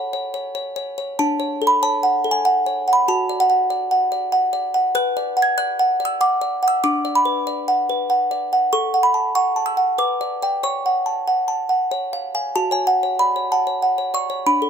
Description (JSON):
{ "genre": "classical, lullaby for music box", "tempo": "95 BPM", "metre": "3/4", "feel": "straight", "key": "F# minor", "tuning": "A4 = 440 Hz", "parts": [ { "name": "music box", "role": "solo", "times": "0.0-14.7 s", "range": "D4 to G#6", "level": "-17 LUFS", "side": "right 1 dB", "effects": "none" } ], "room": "light reverb", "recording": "none", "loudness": "-17 LUFS", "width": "side -7 dB against mid", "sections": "0.0-12.6 A section; 12.6-14.7 B section", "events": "none", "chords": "0.0 F#m/A; 1.2 Dmaj7; 3.1 D/F#; 4.9 Bm; 6.8 Bm/D; 8.7 F#m/A; 10.0 G/B; 10.6 F#m/C#; 11.9 C#; 12.6 F#m" }